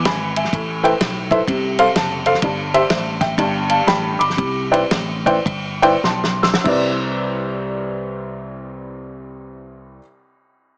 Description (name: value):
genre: uptempo gospel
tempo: 94-127 BPM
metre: 4/4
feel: swing 65% on 8ths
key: C major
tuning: A4 = 440 Hz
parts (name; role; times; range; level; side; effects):
- warm upright piano; accompaniment; 0.0-10.0 s; C2 to E6; -18 LUFS; equal; none
- fingered electric bass; bass; 0.0-10.0 s; F#1 to C2; -26 LUFS; equal; none
- warm soul drum kit; drums; 0.1-6.8 s; crash cymbal, kick drum, ride cymbal, snare drum; -21 LUFS; equal; none
room: light reverb, studio ambience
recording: small speaker sound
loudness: -15 LUFS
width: side -34 dB against mid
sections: 0.0-6.7 A section; 6.7-10.8 B section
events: upright piano fill 1.7-2.4; slowing down 2.4-6.7; drum fill 6.0-6.7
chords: 0.0 E; 0.5 Amadd9; 1.5 F/C; 2.4 C/G; 3.4 G13; 4.4 Cmaj9